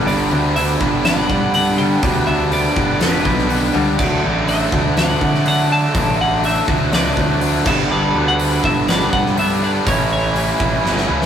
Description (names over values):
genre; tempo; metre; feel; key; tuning
quiet-loud alternative rock; 122 BPM; 4/4; straight; unclear; A4 = 440 Hz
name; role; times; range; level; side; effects
picked acoustic archtop guitar; arpeggios; 0.0-4.0 s; G2 to G3; -25 LUFS; left 4 dB; none
heavy high-gain guitar; riff; 0.0-11.3 s; G2 to E4; -24 LUFS; left 7 dB; distortion
raw garage guitar; riff; 0.0-11.3 s; G2 to E4; -20 LUFS; right 3 dB; overdrive, spring reverb
fuzz picked electric bass; bass; 0.0-11.3 s; E1 to D3; -20 LUFS; equal; overdrive
twelve-string electric guitar; melody; 0.1-11.1 s; B4 to A5; -22 LUFS; equal; none
huge arena drum kit; drums; 0.1-11.3 s; crash cymbal, hi-hat, kick drum, snare drum; -21 LUFS; left 1 dB; none
room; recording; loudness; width
moderate studio reverb, RT60 0.7 s; rough rehearsal-room recording; -14 LUFS; side -8 dB against mid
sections
0.0-11.3 A section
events
drum fill 10.8-11.3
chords
0.0 G; 4.0 D; 7.7 G; 9.9 A7